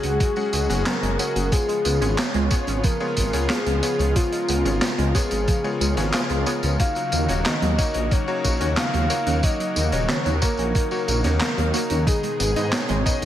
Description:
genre	synthwave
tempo	91 BPM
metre	4/4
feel	straight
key	unclear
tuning	A4 = 440 Hz
part	soft octave-layered synth lead	melody	0.0-13.2 s	E#4 to E#5	-27 LUFS	left 1 dB	chorus, tremolo, tape echo
part	warm analog pad	sustained chords	0.0-13.2 s	B2 to A#4	-30 LUFS	left 1 dB	chorus, tremolo
part	analog pluck	arpeggios	0.0-13.2 s	D#3 to F#4	-30 LUFS	right 4 dB	chorus, phaser, ping-pong delay
part	bright electric grand piano	stabs	0.0-13.2 s	A#3 to A#5	-30 LUFS	left 4 dB	ping-pong delay
part	wide detuned saw bass	bass	0.0-13.2 s	D#1 to G#2	-23 LUFS	equal	chorus
part	street-band drum kit	drums	0.0-13.2 s	handclaps, hi-hat, snare drum, tambourine	-26 LUFS	right 1 dB	gated reverb
part	electronic kick drum	drums	0.2-13.2 s	none	-22 LUFS	equal	none
room	light reverb, studio reverb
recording	none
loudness	-19 LUFS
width	side -11 dB against mid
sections	0.0-13.2 A section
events	none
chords	0.0 F#sus2; 1.5 C#7; 6.8 D#m7; 12.1 G#m

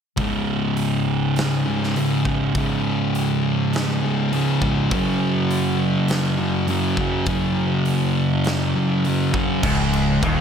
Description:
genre	stoner and doom metal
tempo	102 BPM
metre	4/4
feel	straight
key	unclear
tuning	A4 = 440 Hz
part	thick fuzz guitar	riff	0.2-10.4 s	C#2 to F#3	-22 LUFS	left 8 dB	distortion
part	thick fuzz guitar	riff	0.2-10.4 s	C#2 to F#3	-22 LUFS	right 7 dB	distortion
part	big rock drum kit	drums	0.2-10.4 s	crash cymbal, hi-hat, kick drum, ride cymbal, snare drum	-28 LUFS	equal	none
part	biting overdriven guitar	riff	9.6-10.4 s	C#2 to D#2	-22 LUFS	equal	none
part	growling fingered electric bass	bass	9.6-10.4 s	C#1 to D#1	-24 LUFS	equal	overdrive, tube saturation
room	light reverb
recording	none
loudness	-18 LUFS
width	side -7 dB against mid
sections	0.2-9.6 A section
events	none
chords	0.2 C#5; 4.9 F#5; 9.6 N.C.

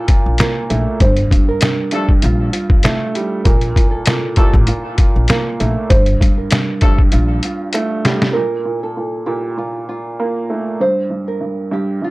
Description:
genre	hip hop, boom-bap hip-hop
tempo	98 BPM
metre	4/4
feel	swing 54% on 16ths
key	unclear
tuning	A4 = 440 Hz
part	nylon-string guitar	melody	0.0-12.1 s	F4 to C5	-23 LUFS	right 2 dB	high-pass filter, low-pass filter, analog delay
part	dark upright piano	accompaniment	0.0-12.1 s	G2 to Bb3	-20 LUFS	right 2 dB	high-pass filter, low-pass filter
part	trip hop sampler-style drum kit	drums	0.1-8.3 s	hi-hat, kick drum, snare drum	-14 LUFS	equal	none
part	upright bass	bass	0.3-7.4 s	G1 to Bb1	-17 LUFS	equal	none
part	finger snaps	percussion	0.4-7.9 s	none	-28 LUFS	left 2 dB	none
part	mellow horn section	stabs	1.9-7.0 s	F3 to A4	-26 LUFS	left 2 dB	high-pass filter, low-pass filter, analog delay
room	little or no reverb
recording	dry, gritty hardware recording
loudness	-13 LUFS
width	side -21 dB against mid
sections	0.0-8.4 A section; 8.4-12.1 B section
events	drum fill 7.1-8.4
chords	0.0 Bbmaj7(no3); 1.0 G7sus2; 3.5 Bbmaj7(no3); 5.9 G7sus2; 8.4 Bb5; 10.8 N.C.

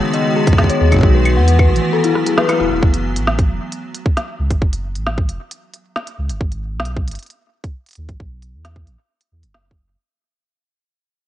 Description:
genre	IDM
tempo	134 BPM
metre	4/4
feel	straight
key	F# dorian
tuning	A4 = 439 Hz
part	icy glass pad	sustained chords	0.0-2.8 s	D#3 to F#4	-20 LUFS	right 2 dB	chorus, built-in reverb, sidechain pumping
part	dark detuned synth bell	arpeggios	0.0-2.8 s	D#4 to F#5	-18 LUFS	left 7 dB	chorus, phaser, vintage 12-bit sampler grit, tape echo
part	organic electronic drum kit	drums	0.1-9.6 s	claves, hi-hat, rim click, snare drum	-22 LUFS	equal	cassette tape, analog delay
part	electronic kick drum	drums	0.5-9.8 s	none	-15 LUFS	equal	cassette tape
part	warm sub bass	bass	0.8-10.0 s	E1 to E2	-18 LUFS	equal	none
room	light reverb, digital ambience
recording	home recording on cassette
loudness	-14 LUFS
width	side -12 dB against mid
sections	0.0-2.8 A section; 2.8-10.0 B section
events	drum fill 2.2-2.8; kick drops out 2.4-2.8; band accent 2.4; fade-out 2.8-10.0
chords	0.0 G#m7; 1.0 B7sus4; 1.9 Esus2; 2.8 F#m; 6.4 G#m; 8.2 Bsus4

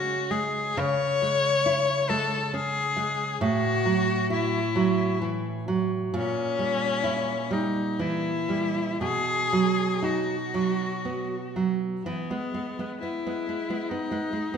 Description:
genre	romantic duo for cello and classical guitar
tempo	58-71 BPM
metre	3/4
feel	rubato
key	E major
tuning	A4 = 445 Hz
part	rich cello	melody	0.0-14.6 s	B3 to C#5	-27 LUFS	left 4 dB	none
part	nylon-string guitar	accompaniment	0.0-14.6 s	A2 to E4	-27 LUFS	right 3 dB	none
room	wet scoring stage reverb, RT60 1.5 s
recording	recorded in a church or concert hall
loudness	-24 LUFS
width	side -7 dB against mid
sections	0.0-12.1 A section; 12.1-14.6 B section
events	none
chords	0.0 C#5; 0.8 C#m; 3.4 F#m7/A; 6.1 A#dim7; 9.0 B; 12.1 E

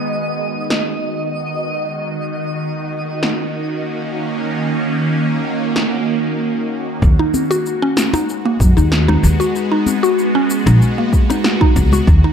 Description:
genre	organic downtempo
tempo	95 BPM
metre	4/4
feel	swing 53% on 16ths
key	unclear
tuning	A4 = 438 Hz
part	bowed-like drone	sustained chords	0.0-12.3 s	Eb3 to Gb4	-20 LUFS	right 1 dB	built-in reverb, phaser, sidechain pumping
part	twinkling granular texture	texture	0.0-6.4 s	Eb5	-26 LUFS	right 2 dB	built-in reverb
part	electronic snare drum and shaker	drums	0.7-12.2 s	none	-20 LUFS	equal	overdrive
part	upright bass	bass	7.0-12.2 s	Bb1 to Gb2	-13 LUFS	equal	tube saturation
part	electronic kick drum	drums	7.0-12.2 s	none	-13 LUFS	equal	overdrive
part	mallet-like synth pluck	arpeggios	7.2-12.3 s	Bb3 to Gb4	-18 LUFS	equal	chorus, phaser, ping-pong delay
part	congas	percussion	7.3-12.0 s	none	-22 LUFS	left 3 dB	none
room	moderate echo chamber reverb, RT60 1.6 s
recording	dark, warm production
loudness	-14 LUFS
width	side -8 dB against mid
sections	0.0-7.0 A section; 7.0-12.3 B section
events	break 6.4-7.0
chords	0.0 Abm7/Eb; 2.0 Ebm7; 7.0 Abm7/Eb

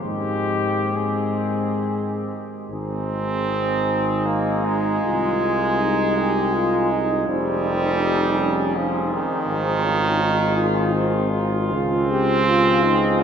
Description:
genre	classical, hymn-like piece for brass band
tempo	64-83 BPM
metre	3/4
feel	rubato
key	Ab major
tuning	A4 = 440 Hz
part	clear trombone section	accompaniment	0.0-13.2 s	Ab3 to G4	-25 LUFS	left 2 dB	none
part	mellow tuba	bass	0.0-13.2 s	F1 to Ab2	-24 LUFS	equal	none
part	warm cornet	melody	0.1-13.2 s	G4 to Ab4	-29 LUFS	left 3 dB	none
part	clear flugelhorn	second line	0.1-13.2 s	C4 to F4	-28 LUFS	right 5 dB	none
part	brilliant trombone	accompaniment	0.1-13.2 s	Eb3 to C4	-23 LUFS	right 3 dB	none
room	wet cathedral reverb, RT60 5.7 s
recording	none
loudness	-18 LUFS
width	side -7 dB against mid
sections	0.0-2.7 A section; 2.7-13.2 A section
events	none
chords	0.1 Ab; 5.0 Ab/C; 7.3 Fm7; 9.5 Fm/Ab; 11.7 Dbmaj7

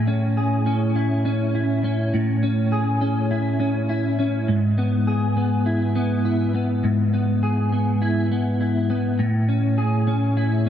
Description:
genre	dream pop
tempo	102 BPM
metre	4/4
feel	straight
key	A major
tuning	A4 = 443 Hz
part	clean electric guitar	solo	0.0-10.7 s	G#2 to G#4	-19 LUFS	equal	ensemble chorus, dub echo
room	moderate spring reverb, RT60 2.7 s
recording	echo-heavy mix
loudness	-19 LUFS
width	side -9 dB against mid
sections	0.0-10.7 A section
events	none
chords	0.0 Amaj7; 4.5 E/G#; 9.2 Amaj7

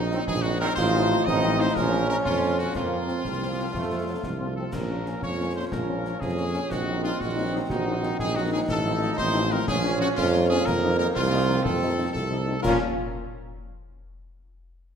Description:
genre	military-style march for wind band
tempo	121 BPM (dotted quarters)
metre	6/8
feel	straight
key	Bb minor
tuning	A4 = 440 Hz
part	clear trumpet section	melody	0.0-12.8 s	Eb4 to Eb5	-30 LUFS	left 2 dB	none
part	clear euphonium	second line	0.0-12.4 s	A3 to Gb4	-30 LUFS	right 3 dB	none
part	mellow tuba	bass	0.0-12.8 s	A1 to Bb2	-26 LUFS	right 2 dB	none
part	dark French horn section	accompaniment	0.1-12.8 s	F3 to F4	-32 LUFS	left 4 dB	none
part	warm trombone section	sustained chords	0.1-12.8 s	Eb3 to Eb4	-32 LUFS	right 2 dB	none
part	concert snare drum, concert bass drum and clash cymbals	drums	0.1-12.8 s	none	-36 LUFS	left 2 dB	none
room	wet concert hall reverb, RT60 1.8 s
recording	none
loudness	-22 LUFS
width	side -7 dB against mid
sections	0.0-12.6 A section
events	none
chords	0.0 Cm7b5/Bb; 0.8 F7/A; 1.8 Bbm; 2.7 Fsus4; 3.7 F; 4.7 Bbm; 6.7 Cm7b5/Bb; 8.7 F7/A; 9.7 Bbm; 10.7 F7sus4; 11.7 F7; 12.6 Bbm

